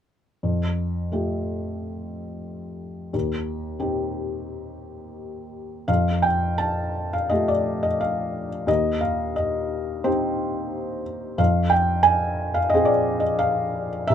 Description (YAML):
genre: classical, lyrical solo piano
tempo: 88 BPM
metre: 4/4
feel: rubato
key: unclear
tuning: A4 = 440 Hz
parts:
  - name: felt-muted upright piano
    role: solo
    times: 0.4-14.1 s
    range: C2 to A5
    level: -22 LUFS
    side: equal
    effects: none
room: wet booth ambience, RT60 0.2 s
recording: none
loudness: -21 LUFS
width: side -9 dB against mid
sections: 0.4-5.9 A section; 5.9-14.1 B section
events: none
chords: 0.4 Fadd9; 3.1 Eb6; 5.9 Fadd9; 8.7 Eb6; 11.4 Fm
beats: | 0.43 1.12 1.80 2.48 | 3.14 3.80 4.47 5.17 | 5.88 6.60 7.31 8.01 | 8.69 9.37 10.05 10.72 | 11.39 12.06 12.74 13.42 | 14.11